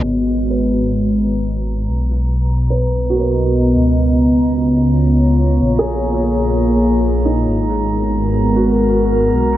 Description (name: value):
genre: future garage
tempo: 129 BPM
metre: 4/4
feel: swing 66% on 16ths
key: G# dorian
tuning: A4 = 441 Hz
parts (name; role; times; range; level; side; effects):
- felt-muted upright piano; accompaniment; 0.0-9.5 s; D#4 to B4; -22 LUFS; right 2 dB; tape echo
- airy breathy pad; sustained chords; 0.0-9.6 s; B2 to A#5; -16 LUFS; equal; chorus
- dark detuned saw bass; bass; 0.0-9.6 s; G#1 to C#2; -18 LUFS; equal; none
- drifting glass-harmonics texture; texture; 0.8-9.6 s; A#5; -30 LUFS; right 6 dB; chorus, built-in reverb
room: moderate huge ambient reverb, RT60 7.0 s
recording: vinyl crackle, low-pass filter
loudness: -13 LUFS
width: side -13 dB against mid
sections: 0.0-9.6 A section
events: filter sweep on analog synth pad 0.0-9.6; filter sweep 0.0-9.6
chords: 0.0 G#m9; 1.9 Bmaj7; 3.8 C#7; 5.6 A#m7; 7.5 G#m9